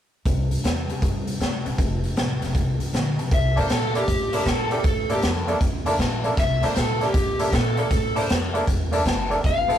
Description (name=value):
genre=electric blues shuffle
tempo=157 BPM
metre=4/4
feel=swing 66% on 8ths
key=C mixolydian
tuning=A4 = 440 Hz
part: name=biting overdriven guitar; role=riff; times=0.3-9.8 s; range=F2 to A4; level=-28 LUFS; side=left 3 dB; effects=phaser
part: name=upright bass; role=bass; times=0.3-9.8 s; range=F1 to Bb2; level=-27 LUFS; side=equal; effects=none
part: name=raw garage drum kit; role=drums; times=0.3-9.8 s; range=hi-hat, kick drum, snare drum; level=-24 LUFS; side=equal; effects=none
part: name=lead guitar through a small cranked amp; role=melody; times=3.3-9.8 s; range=G4 to F5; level=-25 LUFS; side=equal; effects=overdrive
part: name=bright upright piano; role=accompaniment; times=3.6-9.8 s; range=Bb3 to A4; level=-25 LUFS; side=right 1 dB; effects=none
room=moderate booth ambience, RT60 0.2 s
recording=rough rehearsal-room recording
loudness=-20 LUFS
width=side -10 dB against mid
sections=0.3-3.3 A section; 3.3-9.8 B section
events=none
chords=0.3 C; 1.8 F5; 3.3 C13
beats=| 0.26 0.64 1.02 1.41 | 1.79 2.17 2.55 2.94 | 3.32 3.70 4.08 4.47 | 4.85 5.23 5.61 6.00 | 6.38 6.76 7.14 7.53 | 7.91 8.29 8.67 9.06 | 9.44